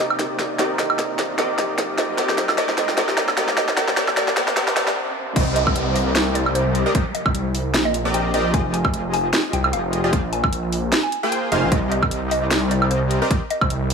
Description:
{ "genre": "future bass", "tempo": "151 BPM", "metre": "4/4", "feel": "swing 55% on 16ths, half-time", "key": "C minor", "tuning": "A4 = 439 Hz", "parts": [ { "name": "mallet-like synth pluck", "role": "melody", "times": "0.0-13.8 s", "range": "Bb4 to Ab5", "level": "-27 LUFS", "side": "equal", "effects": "chorus, phaser, sidechain pumping, digital delay" }, { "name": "overdriven tine electric piano", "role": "accompaniment", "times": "0.0-5.4 s", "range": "C3 to D6", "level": "-29 LUFS", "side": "right 2 dB", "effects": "fast tremolo, sidechain pumping, digital delay" }, { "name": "supersaw stab", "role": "riff", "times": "0.0-13.4 s", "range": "F3 to G5", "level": "-24 LUFS", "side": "equal", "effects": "sidechain pumping" }, { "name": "trap drum kit", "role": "drums", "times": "0.0-13.9 s", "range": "crash cymbal, hi-hat, snare drum, woodblock", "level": "-22 LUFS", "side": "right 1 dB", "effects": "overdrive" }, { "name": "riser and downlifter", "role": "sound effects", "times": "0.5-8.5 s", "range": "none", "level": "-30 LUFS", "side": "equal", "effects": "none" }, { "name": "wide detuned saw bass", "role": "bass", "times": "5.4-13.9 s", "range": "F1 to C2", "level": "-22 LUFS", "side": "equal", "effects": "chorus, sidechain pumping" }, { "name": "electronic kick drum", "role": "drums", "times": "5.4-13.7 s", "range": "none", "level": "-21 LUFS", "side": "equal", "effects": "overdrive" } ], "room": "moderate lush hall reverb, RT60 1.8 s", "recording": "high-pass filter", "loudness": "-18 LUFS", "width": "side -6 dB against mid", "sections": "0.0-5.4 A section; 5.4-13.9 B section", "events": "build-up 0.0-5.4; drum fill 0.0-5.0; filter sweep on supersaw synth 0.0-5.4; riser 0.5-5.0; stop 5.0-5.4; drop 5.4-13.9", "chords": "0.0 Cm9; 3.8 Bbadd9; 5.4 Cm9; 8.5 Fm9; 10.1 Bb7sus2; 11.7 Cm9" }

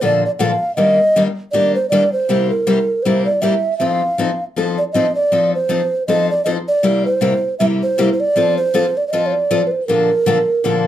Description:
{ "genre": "jazz", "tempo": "158 BPM", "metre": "4/4", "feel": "swing 62% on 8ths", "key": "unclear", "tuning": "A4 = 438 Hz", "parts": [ { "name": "breathy mellow alto ocarina", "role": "melody", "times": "0.0-10.9 s", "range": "Bb4 to Gb5", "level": "-16 LUFS", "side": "right 2 dB", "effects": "none" }, { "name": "picked steel-string acoustic guitar", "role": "accompaniment", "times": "0.0-10.9 s", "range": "Bb2 to A4", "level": "-18 LUFS", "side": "left 3 dB", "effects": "none" } ], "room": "moderate studio reverb, RT60 0.5 s", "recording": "none", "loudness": "-14 LUFS", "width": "side -11 dB against mid", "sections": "0.0-10.9 A section", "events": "none", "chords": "0.0 Bbmaj7; 0.8 Ebmaj7; 2.3 C7; 3.8 F7; 6.8 C7; 8.3 F; 9.9 Bbmaj7" }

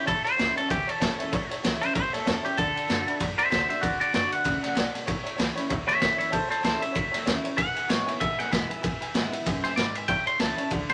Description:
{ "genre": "rockabilly", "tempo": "192 BPM", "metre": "4/4", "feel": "swing 58% on 8ths", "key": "A major", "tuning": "A4 = 440 Hz", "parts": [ { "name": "twangy electric guitar", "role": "melody", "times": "0.0-10.9 s", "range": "F#4 to C6", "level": "-29 LUFS", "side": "equal", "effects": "phaser" }, { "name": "picked steel-string acoustic guitar", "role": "accompaniment", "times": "0.0-10.9 s", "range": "E2 to F#4", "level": "-37 LUFS", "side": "equal", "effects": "none" }, { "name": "tack piano", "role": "accompaniment", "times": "0.0-10.9 s", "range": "B4 to B5", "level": "-39 LUFS", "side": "equal", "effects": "none" }, { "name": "upright bass", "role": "bass", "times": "0.1-10.9 s", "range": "E1 to F#2", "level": "-44 LUFS", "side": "equal", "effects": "none" }, { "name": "raw garage drum kit", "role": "drums", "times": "0.1-10.9 s", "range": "kick drum, ride cymbal, snare drum", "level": "-31 LUFS", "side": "equal", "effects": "none" } ], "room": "light reverb", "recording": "none", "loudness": "-26 LUFS", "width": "mono", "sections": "0.0-10.9 A section", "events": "clean electric guitar solo 0.0-10.9", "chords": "0.0 A; 2.6 D; 5.1 A; 7.6 E; 10.1 A" }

